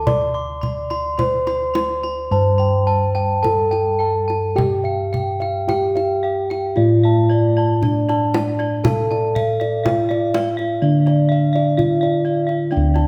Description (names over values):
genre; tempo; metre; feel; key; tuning
Javanese gamelan; 53-65 BPM; 4/4; straight; D slendro; A4 = 440 Hz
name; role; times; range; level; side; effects
gamelan-type bronze metallophone; melody; 0.0-13.1 s; D4 to D5; -23 LUFS; equal; none
gamelan-type bronze metallophone; arpeggios; 0.0-13.1 s; D5 to D6; -29 LUFS; equal; none
gamelan-type bossed gongs; bass; 0.0-13.1 s; D2 to D5; -23 LUFS; equal; none
gamelan-type bossed gongs; arpeggios; 0.1-13.1 s; D5 to C6-25c; -27 LUFS; equal; none
kendang; percussion; 0.1-13.1 s; none; -26 LUFS; equal; none
room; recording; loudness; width
moderate recital hall reverb, RT60 1.6 s; none; -18 LUFS; mono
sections
0.0-12.7 A section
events
none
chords
none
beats
| 0.07 1.19 2.32 3.44 | 4.57 5.68 6.76 7.82 | 8.84 9.84 10.82 11.78 | 12.71